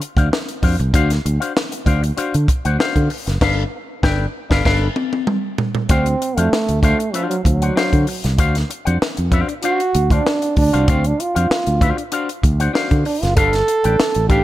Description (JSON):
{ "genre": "funk", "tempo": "96 BPM", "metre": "4/4", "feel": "straight", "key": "unclear", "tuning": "A4 = 441 Hz", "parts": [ { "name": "electric guitar with an envelope filter", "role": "accompaniment", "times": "0.0-14.4 s", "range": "D4 to G5", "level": "-23 LUFS", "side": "left 4 dB", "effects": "wide subtle chorus" }, { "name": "compact cocktail drum kit", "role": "drums", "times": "0.0-14.4 s", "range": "crash cymbal, hi-hat, kick drum, snare drum, toms", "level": "-19 LUFS", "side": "equal", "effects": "none" }, { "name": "fingered electric bass", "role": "bass", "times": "0.2-14.4 s", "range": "F#1 to D3", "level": "-18 LUFS", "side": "equal", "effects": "none" }, { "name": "warm trombone", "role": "melody", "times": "5.9-14.4 s", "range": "E#3 to A4", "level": "-19 LUFS", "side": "right 3 dB", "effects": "none" } ], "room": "light reverb, studio reverb", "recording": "none", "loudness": "-15 LUFS", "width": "side -14 dB against mid", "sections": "0.0-5.9 A section; 5.9-14.4 B section", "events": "band accent 3.4-5.9; drum fill 4.7-5.9; trombone solo 5.9-14.4", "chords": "0.0 D7#9; 3.4 G9; 5.9 D7#9; 13.4 G9" }